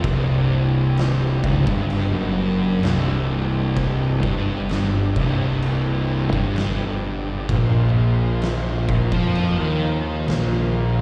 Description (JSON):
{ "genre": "stoner and doom metal", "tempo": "64 BPM", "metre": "4/4", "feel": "straight", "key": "C minor", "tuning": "A4 = 440 Hz", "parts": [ { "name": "thick fuzz guitar", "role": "riff", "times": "0.0-11.0 s", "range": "C2 to F3", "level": "-28 LUFS", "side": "equal", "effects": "distortion, slapback echo" }, { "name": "thick fuzz guitar", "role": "riff", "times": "0.0-11.0 s", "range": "C2 to F3", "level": "-25 LUFS", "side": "equal", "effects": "distortion" }, { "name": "fuzz fingered electric bass", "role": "bass", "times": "0.0-11.0 s", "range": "C1 to F2", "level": "-26 LUFS", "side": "equal", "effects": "overdrive" }, { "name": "oversized low-tuned drum kit", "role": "drums", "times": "0.0-10.5 s", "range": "crash cymbal, kick drum, snare drum", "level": "-30 LUFS", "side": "equal", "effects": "none" }, { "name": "bright tonewheel organ", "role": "sustained chords", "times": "0.1-11.0 s", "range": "C3 to C5", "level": "-35 LUFS", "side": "equal", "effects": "slow rotary speaker, chorus vibrato" } ], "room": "light reverb, small room reverb", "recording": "live gig heard through the venue's PA, recital hall reverb", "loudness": "-21 LUFS", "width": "mono", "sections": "0.0-11.0 A section", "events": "none", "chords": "0.0 C5; 7.5 Bb5" }